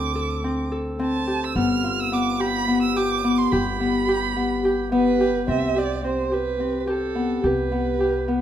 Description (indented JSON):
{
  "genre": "contemporary instrumental, chamber music in an uneven meter",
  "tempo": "214 BPM (eighths)",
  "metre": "7/8",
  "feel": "straight",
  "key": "unclear",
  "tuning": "A4 = 439 Hz",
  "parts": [
    { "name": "dark violin", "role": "melody", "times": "0.0-8.4 s", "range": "A4 to F6", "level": "-26 LUFS", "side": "right 6 dB", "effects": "none" },
    { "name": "Celtic harp", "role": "arpeggios", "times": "0.0-8.4 s", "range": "B3 to A4", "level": "-22 LUFS", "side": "left 2 dB", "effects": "none" },
    { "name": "upright bass", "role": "bass", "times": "0.0-8.4 s", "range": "G1 to D2", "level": "-31 LUFS", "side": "equal", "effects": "none" }
  ],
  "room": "moderate recital hall reverb, RT60 1.5 s",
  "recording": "minimal, uncompressed stereo recording",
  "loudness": "-20 LUFS",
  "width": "side -10 dB against mid",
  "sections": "0.0-5.5 A section; 5.5-8.4 B section",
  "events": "none",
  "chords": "0.0 D5; 1.6 G7; 5.5 C5",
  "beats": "0.16 0.44 0.72 1.00 1.28 | 1.56 1.84 2.12 2.40 2.68 2.96 3.24 | 3.52 3.80 4.08 4.36 4.64 4.92 5.20 | 5.48 5.76 6.04 6.33 6.61 6.88 7.17 | 7.45 7.72 8.01 8.29"
}